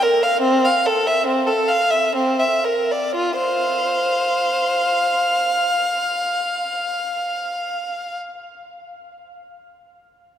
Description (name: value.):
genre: classical, baroque-style suite movement for unaccompanied violin.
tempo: 58-75 BPM.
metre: 3/4.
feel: rubato.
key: F major.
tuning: A4 = 441 Hz.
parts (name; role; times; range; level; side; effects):
clear violin; solo; 0.0-8.2 s; C4 to F5; -18 LUFS; equal; none.
room: wet cathedral reverb, RT60 6.7 s.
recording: none.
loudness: -17 LUFS.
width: side -10 dB against mid.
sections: 0.0-3.1 A section; 3.1-9.3 B section.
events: slowing down 0.0-3.1.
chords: 0.4 F/C; 2.1 C7; 3.1 F5.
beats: | 0.41 1.25 2.15 | 3.15 4.17 5.19 | 6.21 7.23.